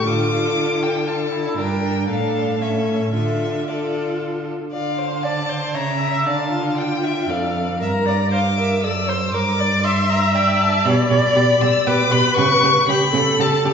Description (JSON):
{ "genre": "quick classical-period movement for string quartet", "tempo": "118 BPM", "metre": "3/4", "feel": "rubato", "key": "D minor", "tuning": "A4 = 443 Hz", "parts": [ { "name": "rich violin", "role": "melody", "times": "0.0-13.7 s", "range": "D5 to E6", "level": "-22 LUFS", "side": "left 4 dB", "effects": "none" }, { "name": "clear violin", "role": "second line", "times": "0.0-13.7 s", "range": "G4 to G5", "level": "-25 LUFS", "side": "left 2 dB", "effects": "none" }, { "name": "rich viola", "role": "accompaniment", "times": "0.0-13.7 s", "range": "C#4 to E5", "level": "-22 LUFS", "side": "right 1 dB", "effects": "none" }, { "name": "clear cello", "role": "bass", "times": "0.0-13.7 s", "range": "F2 to D3", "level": "-22 LUFS", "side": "right 2 dB", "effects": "none" } ], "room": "wet recital hall reverb, RT60 1.7 s", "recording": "recorded in a church or concert hall, nothing above 7.7 kHz", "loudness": "-16 LUFS", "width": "side -7 dB against mid", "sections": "0.0-4.7 A section; 4.7-13.7 A section", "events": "none", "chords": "0.1 Dm; 1.6 Gm; 2.1 Dm/A; 2.6 A; 3.1 Dm; 5.7 C#m6; 6.3 Dm; 7.8 Gm7; 8.8 D/F#; 9.3 Gm; 10.9 G/B; 12.4 A7/C#", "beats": "| 0.07 0.57 1.07 | 1.58 2.09 2.60 | 3.13 3.66 4.19 | 4.71 5.23 5.75 | 6.26 6.78 7.29 | 7.80 8.31 8.83 | 9.34 9.84 10.35 | 10.86 11.36 11.87 | 12.38 12.88 13.39" }